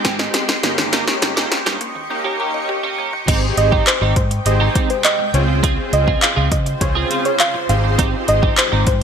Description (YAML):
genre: dance-pop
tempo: 102 BPM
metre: 4/4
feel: straight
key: Ab major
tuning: A4 = 436 Hz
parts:
  - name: big bright polysynth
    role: accompaniment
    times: 0.0-8.6 s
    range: Ab3 to C5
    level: -24 LUFS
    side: equal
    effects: chorus, sidechain pumping
  - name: shimmering ambient pad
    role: sustained chords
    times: 0.0-9.0 s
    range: C3 to Db6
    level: -26 LUFS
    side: equal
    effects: chorus, built-in reverb, phaser, sidechain pumping
  - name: mallet-like synth pluck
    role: arpeggios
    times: 0.0-3.2 s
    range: Eb3 to G6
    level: -30 LUFS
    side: left 4 dB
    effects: chorus, sidechain pumping, ping-pong delay
  - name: twelve-string electric guitar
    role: riff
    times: 0.0-8.9 s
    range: Ab3 to Ab4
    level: -24 LUFS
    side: right 7 dB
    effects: analog chorus
  - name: vintage muted fingered electric bass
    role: bass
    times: 0.0-9.0 s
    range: G1 to Db3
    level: -19 LUFS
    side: equal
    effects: sidechain pumping
  - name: deep house drum kit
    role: drums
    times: 0.0-9.0 s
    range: crash cymbal, handclaps, hi-hat, kick drum, snare drum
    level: -18 LUFS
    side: equal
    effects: overdrive, gated reverb
  - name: soft round pluck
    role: melody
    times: 3.6-9.0 s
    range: C5 to F5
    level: -20 LUFS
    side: right 2 dB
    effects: chorus, sidechain pumping, ping-pong delay
room: light reverb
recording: bright 1980s-style digital production, high-pass filter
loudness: -14 LUFS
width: side -7 dB against mid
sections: 0.0-3.3 A section; 3.3-9.0 B section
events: build-up 0.0-3.3; drum fill 0.0-2.1; drop 3.3-9.0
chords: 0.0 Abmaj7; 0.6 Eb7/G; 3.3 Abmaj7; 5.3 Dbmaj7; 7.7 Abmaj7